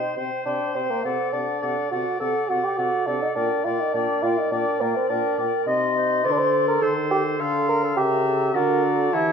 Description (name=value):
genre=quick classical-period movement for wind quintet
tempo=104 BPM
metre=4/4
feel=straight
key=G minor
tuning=A4 = 435 Hz
part: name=mellow silver concert flute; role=melody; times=0.0-9.3 s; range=F#5 to C6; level=-29 LUFS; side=left 6 dB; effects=none
part: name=clear oboe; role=second line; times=0.0-9.3 s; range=C5 to F5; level=-30 LUFS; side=left 4 dB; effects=none
part: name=mellow clarinet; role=accompaniment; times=0.0-9.3 s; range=G4 to Eb5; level=-28 LUFS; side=right 6 dB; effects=none
part: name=mellow bassoon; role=bass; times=0.0-9.3 s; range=Bb3 to C5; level=-23 LUFS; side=right 1 dB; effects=none
part: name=mellow French horn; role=accompaniment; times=0.2-9.3 s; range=Bb2 to E3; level=-30 LUFS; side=left 2 dB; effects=none
room=moderate recital hall reverb, RT60 1.5 s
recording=minimal, uncompressed stereo recording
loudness=-20 LUFS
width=side -6 dB against mid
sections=0.0-9.3 A section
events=none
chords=0.0 Cm; 1.0 D7/C; 3.4 Gm/Bb; 5.7 Adim/C; 8.0 C#dim7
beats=0.46 | 1.04 1.62 2.20 2.78 | 3.36 3.94 4.52 5.09 | 5.67 6.25 6.82 7.39 | 7.97 8.55 9.13